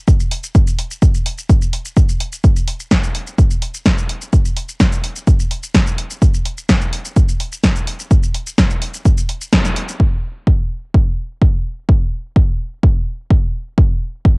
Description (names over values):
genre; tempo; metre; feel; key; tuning
techno; 127 BPM; 4/4; straight; none; none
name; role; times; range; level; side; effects
electronic kick drum; drums; 0.1-14.3 s; none; -13 LUFS; equal; cassette tape
techno drum kit; drums; 0.1-10.0 s; hi-hat, shaker, snare drum; -19 LUFS; equal; cassette tape
room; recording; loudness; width
little or no reverb; home recording on cassette; -14 LUFS; side -32 dB against mid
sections
0.0-10.0 A section; 10.0-14.4 B section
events
band accent 9.5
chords
none